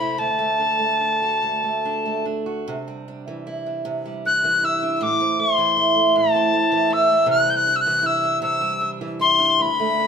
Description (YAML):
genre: celtic folk, Celtic slow air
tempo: 47-53 BPM (dotted quarters)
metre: 6/8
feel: rubato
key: unclear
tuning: A4 = 440 Hz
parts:
  - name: bright wooden whistle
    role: melody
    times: 0.0-10.1 s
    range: A5 to G6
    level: -19 LUFS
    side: left 2 dB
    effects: none
  - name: picked old ladder-braced acoustic guitar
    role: accompaniment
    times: 0.0-10.1 s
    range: D2 to F#4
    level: -23 LUFS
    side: right 2 dB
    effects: none
room: moderate stone room reverb, RT60 1.6 s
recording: band playing live in one room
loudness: -17 LUFS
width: side -6 dB against mid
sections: 0.0-2.7 A section; 2.7-10.1 B section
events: none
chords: 0.2 D; 2.7 Cadd9; 5.0 Am; 7.3 Cadd9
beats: | 0.19 1.42 | 2.67 3.85 | 5.00 6.15 | 7.29 8.43 | 9.60